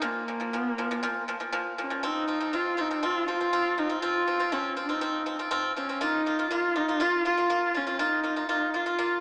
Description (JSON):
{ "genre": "mongolian traditional, Mongolian folk", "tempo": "121 BPM", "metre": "4/4", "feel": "straight", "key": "Bb minor", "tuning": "A4 = 439 Hz", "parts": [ { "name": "warm horsehead fiddle", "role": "melody", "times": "0.0-9.2 s", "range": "Bb3 to F4", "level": "-28 LUFS", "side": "equal", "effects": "none" }, { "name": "pipa", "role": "arpeggios", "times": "0.0-9.2 s", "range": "Bb2 to F4", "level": "-28 LUFS", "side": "equal", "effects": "none" } ], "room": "wet concert hall reverb, RT60 1.8 s", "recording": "small speaker sound", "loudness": "-25 LUFS", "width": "side -36 dB against mid", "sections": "0.0-2.0 A section; 2.0-9.2 B section", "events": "none", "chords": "0.0 Bb5; 2.0 F5; 6.0 Bb5", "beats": "| 0.03 0.53 1.03 1.53 | 2.03 2.53 3.03 3.52 | 4.02 4.52 5.02 5.51 | 6.01 6.51 7.00 7.50 | 8.00 8.49 8.99" }